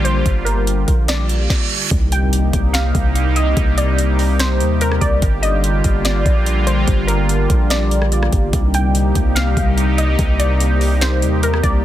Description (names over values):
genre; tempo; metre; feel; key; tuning
hip hop, atmospheric cloud-rap; 145 BPM; 4/4; half-time; C minor; A4 = 441 Hz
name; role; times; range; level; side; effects
warbly dusty pluck; melody; 0.0-11.8 s; Bb4 to G5; -23 LUFS; left 1 dB; chorus, low-pass filter, digital delay
sweeping resonant pad; sustained chords; 0.0-11.8 s; C3 to G4; -20 LUFS; left 1 dB; chorus, sidechain pumping
long sustained 808-style bass; bass; 0.0-11.8 s; G1 to Eb2; -17 LUFS; equal; none
smooth R&B drum kit; drums; 0.1-11.7 s; hi-hat, kick drum, rim click, snare drum; -19 LUFS; equal; overdrive
reverse cymbal and impact; sound effects; 1.3-3.6 s; none; -25 LUFS; right 3 dB; none
room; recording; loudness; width
little or no reverb; dense, heavily limited modern master; -14 LUFS; side -12 dB against mid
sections
0.0-1.9 A section; 1.9-11.8 B section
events
reverse cymbal 1.3-1.9; impact 1.9-3.6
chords
0.0 Gm7; 1.9 Cm7; 5.2 Gm7; 8.5 Cm7